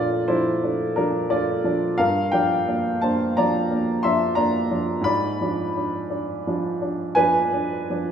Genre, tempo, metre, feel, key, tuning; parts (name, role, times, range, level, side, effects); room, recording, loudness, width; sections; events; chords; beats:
classical, romantic nocturne for solo piano; 58 BPM (dotted quarters); 9/8; rubato; A4 = 440 Hz
clear upright piano; solo; 0.0-8.1 s; G2 to C6; -20 LUFS; equal
wet large studio reverb, RT60 1.3 s; heard from further back in the room; -20 LUFS; side -8 dB against mid
0.0-8.1 A section
0.0 Bbmaj7; 2.0 Gm7; 5.1 G#dim7
0.99 | 2.00 3.04 4.06 | 5.08 6.12 7.17